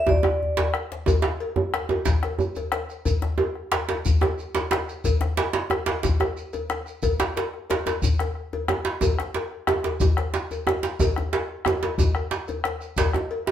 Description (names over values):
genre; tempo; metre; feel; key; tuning
west african traditional, West African drum ensemble; 121 BPM (dotted quarters); 12/8; straight; unclear; A4 = 440 Hz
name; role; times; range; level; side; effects
vibraphone with hard mallets; melody; 0.0-0.7 s; D5; -24 LUFS; right 1 dB; none
bombo; percussion; 0.1-13.5 s; none; -28 LUFS; left 2 dB; none
djembe; percussion; 0.1-13.3 s; none; -27 LUFS; left 2 dB; none
djembe; percussion; 0.1-13.5 s; none; -25 LUFS; right 4 dB; none
cowbell; percussion; 0.6-13.5 s; none; -32 LUFS; left 5 dB; none
shekere; percussion; 1.1-13.1 s; none; -34 LUFS; right 1 dB; none
room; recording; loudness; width
wet studio reverb, RT60 0.8 s; band playing live in one room; -22 LUFS; side -10 dB against mid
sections
0.0-1.1 A section; 1.1-13.5 B section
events
drum fill 0.0-1.1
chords
none